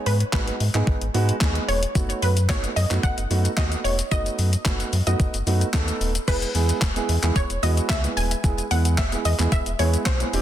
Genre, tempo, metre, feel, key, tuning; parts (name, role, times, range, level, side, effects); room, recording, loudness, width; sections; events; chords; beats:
dance-pop; 111 BPM; 4/4; straight; E major; A4 = 441 Hz
wide unison pluck; melody; 0.0-10.4 s; B4 to G#5; -29 LUFS; equal; digital delay
warm concert grand piano; accompaniment; 0.0-10.4 s; G#3 to B4; -28 LUFS; right 4 dB; sidechain pumping
sub bass with octave; bass; 0.1-10.4 s; D#1 to G#2; -23 LUFS; equal; sidechain pumping
gated 80s digital drum machine; drums; 0.1-10.4 s; crash cymbal, handclaps, hi-hat, kick drum, shaker, snare drum; -25 LUFS; left 1 dB; gated reverb, gated reverb snare, overdrive
digital ambience; dense, heavily limited modern master; -20 LUFS; side -11 dB against mid
0.0-6.3 A section; 6.3-10.4 B section
0.0 G#m; 2.0 B7; 6.3 E
0.33 0.87 1.41 | 1.95 2.49 3.04 3.58 | 4.12 4.66 5.20 5.74 | 6.28 6.82 7.36 7.90 | 8.44 8.98 9.52 10.06